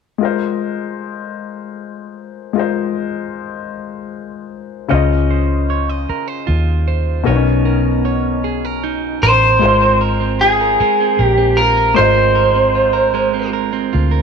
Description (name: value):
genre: slow six-eight R&B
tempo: 51 BPM (dotted quarters)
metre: 6/8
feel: straight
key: Ab major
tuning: A4 = 440 Hz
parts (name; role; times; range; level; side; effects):
- clear concert grand piano; accompaniment; 0.2-14.2 s; B2 to Eb5; -21 LUFS; left 9 dB; none
- electric guitar at the edge of break-up; second line; 4.9-14.2 s; Ab3 to Eb5; -21 LUFS; right 12 dB; phaser
- vintage muted fingered electric bass; bass; 4.9-14.2 s; Ab1 to Eb2; -17 LUFS; equal; none
- lightly driven lead guitar; melody; 9.2-13.5 s; Ab4 to C5; -12 LUFS; right 1 dB; none
room: light reverb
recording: 1960s-style stereo with parts hard left and right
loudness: -13 LUFS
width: side -6 dB against mid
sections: 0.2-9.6 A section; 9.6-14.2 B section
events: none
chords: 0.2 Ab69; 4.9 Dbmaj9; 7.3 Bmaj9; 9.6 Ab69